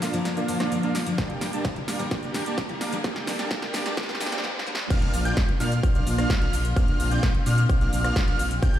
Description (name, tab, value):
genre	EDM, festival progressive house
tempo	129 BPM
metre	4/4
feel	straight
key	unclear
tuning	A4 = 445 Hz
part	picked steel-string acoustic guitar	accompaniment	0.0-4.7 s	D3 to E4	-32 LUFS	left 2 dB	sidechain pumping, ping-pong delay
part	warm chamber string section	sustained chords	0.0-8.8 s	D3 to Bb4	-36 LUFS	left 1 dB	sidechain pumping
part	dense compressed supersaw	riff	0.0-8.8 s	Bb3 to A5	-30 LUFS	right 2 dB	sidechain pumping, low-pass filter, ping-pong delay
part	big-room dance drum kit	drums	0.0-8.8 s	crash cymbal, hi-hat, rim click, shaker, snare drum	-31 LUFS	right 1 dB	none
part	riser	sound effects	1.1-4.4 s	none	-39 LUFS	equal	none
part	electronic kick drum	drums	1.2-8.7 s	none	-24 LUFS	equal	none
part	wide unison lead	arpeggios	4.9-8.8 s	F6 to G6	-31 LUFS	equal	lush chorus, vintage 12-bit sampler grit, sidechain pumping, ping-pong delay
part	wide detuned saw bass	bass	4.9-8.7 s	G1 to Bb2	-25 LUFS	equal	chorus, sidechain pumping
room	light reverb, digital ambience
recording	played on a big sound system in a bare room, stone room reverb, high-pass filter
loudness	-22 LUFS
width	side -12 dB against mid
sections	0.0-4.9 A section; 4.9-8.8 B section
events	build-up 0.0-4.9; drum fill 0.0-4.4, 4.4-4.9; filter sweep on supersaw synth 0.0-4.9; filter sweep 0.0-4.9; riser 1.1-4.4; drop 4.9-8.8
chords	0.0 Bb; 1.2 Gm; 4.9 Bb